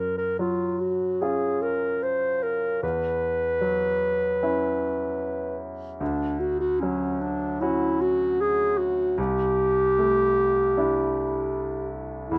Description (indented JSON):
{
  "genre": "classical, impressionist duo for clarinet and grand piano",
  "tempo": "75 BPM",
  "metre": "4/4",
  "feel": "rubato",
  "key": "unclear",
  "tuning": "A4 = 437 Hz",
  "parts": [
    { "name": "warm clarinet", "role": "melody", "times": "0.0-12.4 s", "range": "C#4 to C5", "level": "-26 LUFS", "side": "equal", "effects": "none" },
    { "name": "clear concert grand piano", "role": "accompaniment", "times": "0.0-12.4 s", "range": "C2 to F#4", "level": "-32 LUFS", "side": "equal", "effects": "none" }
  ],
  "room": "light reverb",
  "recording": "none",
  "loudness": "-25 LUFS",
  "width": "mono",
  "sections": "0.0-12.4 A section",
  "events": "none",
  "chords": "0.0 Gb5; 2.8 Esus2; 6.0 Dmaj7; 9.2 C69",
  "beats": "0.39 1.22 2.03 | 2.83 3.63 4.42 5.21 | 6.01 6.82 7.62 8.40 | 9.18 9.98 10.76 11.54 | 12.31"
}